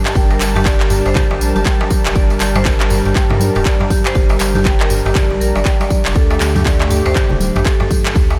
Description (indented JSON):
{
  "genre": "afro house",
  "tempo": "120 BPM",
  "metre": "4/4",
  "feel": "swing 60% on 16ths",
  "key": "G minor",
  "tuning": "A4 = 438 Hz",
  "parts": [
    { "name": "warm analog pad", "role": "sustained chords", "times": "0.0-8.1 s", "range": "D3 to A5", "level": "-25 LUFS", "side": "equal", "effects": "chorus, sidechain pumping" },
    { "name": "marimba with hard mallets", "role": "arpeggios", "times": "0.1-8.1 s", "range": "D4 to G5", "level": "-23 LUFS", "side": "equal", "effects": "sidechain pumping, tape echo" },
    { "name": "house drum kit", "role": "drums", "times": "0.1-8.1 s", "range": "handclaps, toms", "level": "-24 LUFS", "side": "equal", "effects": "none" },
    { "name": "darbuka", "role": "percussion", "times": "0.1-8.4 s", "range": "none", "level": "-27 LUFS", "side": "equal", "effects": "none" },
    { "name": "tambourine", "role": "percussion", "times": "0.1-8.4 s", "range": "none", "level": "-32 LUFS", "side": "equal", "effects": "none" },
    { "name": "warm sub bass", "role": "bass", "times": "0.2-8.4 s", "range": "D1 to G2", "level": "-21 LUFS", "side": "equal", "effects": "sidechain pumping" },
    { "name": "electronic kick drum", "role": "drums", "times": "0.2-8.3 s", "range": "none", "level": "-18 LUFS", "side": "equal", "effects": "none" },
    { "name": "congas", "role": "percussion", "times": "0.2-8.3 s", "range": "none", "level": "-27 LUFS", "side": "equal", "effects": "none" }
  ],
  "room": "light reverb",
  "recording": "none",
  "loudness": "-14 LUFS",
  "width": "mono",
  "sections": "0.0-8.4 A section",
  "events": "none",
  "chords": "0.0 Gmadd9; 6.2 Dsus4",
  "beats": "| 0.16 0.66 1.16 1.66 | 2.16 2.66 3.16 3.66 | 4.16 4.66 5.16 5.66 | 6.16 6.66 7.16 7.66 | 8.16"
}